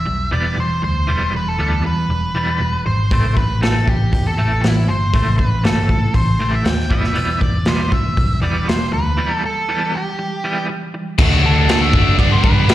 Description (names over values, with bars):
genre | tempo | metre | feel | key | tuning
quiet-loud alternative rock | 119 BPM | 4/4 | straight | E minor | A4 = 441 Hz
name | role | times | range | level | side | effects
octave-fuzz lead guitar | melody | 0.0-12.7 s | E4 to G5 | -22 LUFS | equal | distortion, slapback echo
electric guitar at the edge of break-up | arpeggios | 0.0-11.2 s | A2 to B3 | -23 LUFS | right 1 dB | tremolo, slapback echo
picked electric bass | bass | 0.0-12.7 s | E1 to A2 | -18 LUFS | equal | none
raw garage drum kit | drums | 3.1-12.7 s | crash cymbal, hi-hat, kick drum, snare drum | -18 LUFS | equal | none
distorted electric guitar | riff | 11.2-12.7 s | G2 to D4 | -20 LUFS | right 16 dB | overdrive
scooped high-gain guitar | riff | 11.2-12.7 s | G2 to D4 | -18 LUFS | left 15 dB | distortion
room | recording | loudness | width
little or no reverb | live gig heard through the venue's PA, recital hall reverb | -14 LUFS | side -14 dB against mid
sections
0.0-11.2 A section; 11.2-12.7 B section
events
break 9.2-11.2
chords
0.0 Em; 3.1 Am; 6.9 Em; 11.2 D; 12.2 G